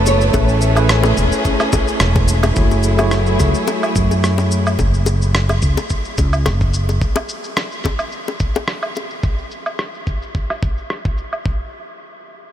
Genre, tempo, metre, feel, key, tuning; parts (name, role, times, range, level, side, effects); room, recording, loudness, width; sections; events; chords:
sunset chillout; 108 BPM; 4/4; swing 54% on 16ths; F# minor; A4 = 440 Hz
nylon-string guitar; melody; 0.0-2.0 s; C#5; -25 LUFS; right 1 dB; ensemble chorus, tape echo
tine electric piano; accompaniment; 0.0-4.8 s; A3 to C#5; -22 LUFS; equal; medium stereo tremolo, auto-pan, tape echo
rich chamber string section; sustained chords; 0.0-4.8 s; F#3 to G#4; -24 LUFS; equal
mellow fretless electric bass; bass; 0.0-7.0 s; E1 to F#2; -16 LUFS; equal
electronic cabasa, woodblock and rim click; drums; 0.1-11.4 s; -23 LUFS; equal; overdrive, low-pass filter on perc, studio ambience, low-pass filter on snare
bongos; percussion; 0.1-9.1 s; -26 LUFS; left 5 dB
electronic kick drum; drums; 0.3-11.6 s; -19 LUFS; equal; overdrive, studio ambience
moderate huge ambient reverb, RT60 7.8 s; dreamy mix soaked in reverb; -15 LUFS; side -11 dB against mid
0.0-2.6 A section; 2.6-11.5 B section; 11.5-12.5 C section
filter sweep on drum 2.6-11.5
0.3 Amaj9; 2.6 F#m9; 7.0 N.C.